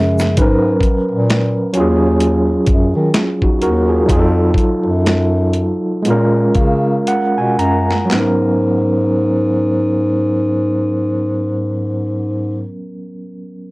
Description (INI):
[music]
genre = R&B, neo-soul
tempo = 56-66 BPM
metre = 4/4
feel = swing 59% on 16ths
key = G# dorian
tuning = A4 = 440 Hz
[part]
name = overdriven tine electric piano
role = accompaniment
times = 0.0-13.7 s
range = C#3 to A#5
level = -16 LUFS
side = right 1 dB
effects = fast tremolo
[part]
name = breathy bass clarinet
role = bass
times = 0.0-12.7 s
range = D#2 to D#3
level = -16 LUFS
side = equal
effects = none
[part]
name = boom bap sampler-style drum kit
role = drums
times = 0.2-8.4 s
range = handclaps, hi-hat, kick drum, snare drum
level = -16 LUFS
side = equal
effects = overdrive
[sound]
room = light reverb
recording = dry, gritty hardware recording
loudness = -13 LUFS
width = side -22 dB against mid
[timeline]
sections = 0.4-8.1 A section; 8.1-12.4 B section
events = drum fill 0.0-0.4, 7.1-8.1; slowing down 0.4-8.1; tine electric piano fill 6.0-8.1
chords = 0.4 G#m11; 1.7 D#m11; 4.1 F7b9; 6.0 A#m7; 8.1 G#m11